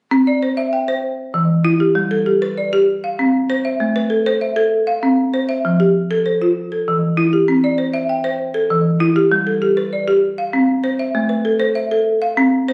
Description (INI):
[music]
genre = southern african traditional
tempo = 130 BPM (dotted quarters)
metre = 12/8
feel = straight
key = C major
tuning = A4 = 440 Hz
[part]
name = folk marimba with medium hard mallets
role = arpeggios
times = 0.1-12.7 s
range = E3 to G5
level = -17 LUFS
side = equal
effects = none
[sound]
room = light reverb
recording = recorded on a phone in the room, studio reverb, compression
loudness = -17 LUFS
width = mono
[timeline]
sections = 0.1-12.7 A section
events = none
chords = 0.1 C; 1.0 Em; 2.0 G; 2.9 C; 3.8 Am; 4.7 C; 5.6 F; 6.6 Em; 7.5 C; 8.4 Em; 9.3 G; 10.2 C; 11.2 Am; 12.1 C